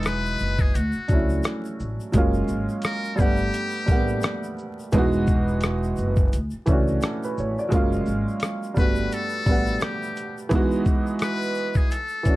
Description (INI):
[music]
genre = lo-fi hip hop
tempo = 86 BPM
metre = 4/4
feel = swing 57% on 16ths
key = unclear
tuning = A4 = 440 Hz
[part]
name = trumpet with metal mute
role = melody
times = 0.0-4.6, 8.8-12.4 s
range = F#4 to B4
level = -29 LUFS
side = left 3 dB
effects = none
[part]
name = warm upright piano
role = accompaniment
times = 0.0-12.4 s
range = E3 to F#5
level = -25 LUFS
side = right 2 dB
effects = cassette tape
[part]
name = upright bass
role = bass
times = 0.0-9.8 s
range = E1 to D2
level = -27 LUFS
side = equal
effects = none
[part]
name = dusty soul sampler-style drum kit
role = drums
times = 0.0-12.4 s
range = hi-hat, kick drum, rim click, shaker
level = -22 LUFS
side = equal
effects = vintage 12-bit sampler grit
[part]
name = tube shaker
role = percussion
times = 0.0-12.4 s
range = none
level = -49 LUFS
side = left 6 dB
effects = none
[sound]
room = light reverb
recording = vinyl crackle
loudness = -21 LUFS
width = side -18 dB against mid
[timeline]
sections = 0.0-12.4 A section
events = none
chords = 0.0 Emaj9; 0.7 Dmaj9; 2.1 F#maj9; 3.2 Gmaj9; 4.9 Emaj9; 6.3 Dmaj9; 7.7 F#maj9; 8.8 Gmaj9; 10.5 Emaj9